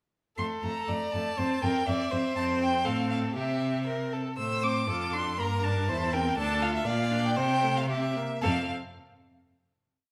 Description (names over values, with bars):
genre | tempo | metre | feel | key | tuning
quick classical-period movement for string quartet | 119 BPM | 2/4 | rubato | F major | A4 = 443 Hz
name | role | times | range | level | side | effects
clear violin | melody | 0.4-8.7 s | E5 to E6 | -34 LUFS | equal | none
clear violin | second line | 0.4-8.7 s | G4 to D5 | -36 LUFS | equal | none
clear viola | accompaniment | 0.4-8.7 s | A3 to F4 | -35 LUFS | equal | none
clear cello | bass | 0.4-8.7 s | D2 to C3 | -34 LUFS | equal | none
room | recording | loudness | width
moderate recital hall reverb, RT60 1.3 s | none | -29 LUFS | mono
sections
0.4-8.4 theme; 8.4-9.5 final chord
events
none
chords
0.4 F; 2.9 F/A; 3.4 C; 4.4 Am; 4.9 Dm/F; 5.4 Gm; 5.9 C/E; 6.4 Dm; 6.9 Bb; 7.4 Fadd9/C; 7.9 C7; 8.4 F